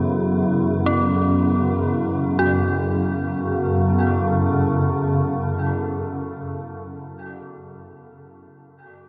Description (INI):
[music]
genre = dark ambient drone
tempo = free time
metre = none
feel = none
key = F# minor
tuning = A4 = 440 Hz
[part]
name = deep dark ambient pad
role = sustained chords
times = 0.0-6.1 s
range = F#3 to A4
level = -27 LUFS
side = equal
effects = chorus, built-in reverb
[part]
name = dark detuned synth bell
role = arpeggios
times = 0.0-9.1 s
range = C#4 to F#4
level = -28 LUFS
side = equal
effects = chorus, diffuse ambient delay
[part]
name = swarming drone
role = drone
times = 0.0-5.7 s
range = F#2 to C#3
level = -25 LUFS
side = equal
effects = built-in reverb
[part]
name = quartz singing bowl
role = texture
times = 0.0-2.4 s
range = none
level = barely audible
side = none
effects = none
[sound]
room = wet huge ambient reverb, RT60 7.5 s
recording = none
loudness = -21 LUFS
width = mono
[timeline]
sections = 0.0-2.4 A section; 2.4-6.7 B section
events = none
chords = 0.0 F#m